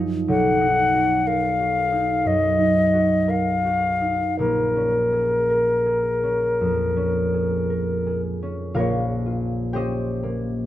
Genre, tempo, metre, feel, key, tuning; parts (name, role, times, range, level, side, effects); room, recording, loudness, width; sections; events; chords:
classical, impressionist duo for flute and harp; 53-62 BPM; 4/4; rubato; Bb minor; A4 = 444 Hz
concert harp; accompaniment; 0.0-10.7 s; Bb1 to G5; -23 LUFS; right 1 dB
concert flute; melody; 0.3-8.2 s; Bb4 to F#5; -20 LUFS; left 2 dB
moderate recital hall reverb, RT60 1.8 s; close, detailed microphones; -19 LUFS; side -13 dB against mid
0.0-8.8 A section; 8.8-10.7 B section
0.3 Bmaj7; 4.4 Bbm7; 8.8 Eb13/Bb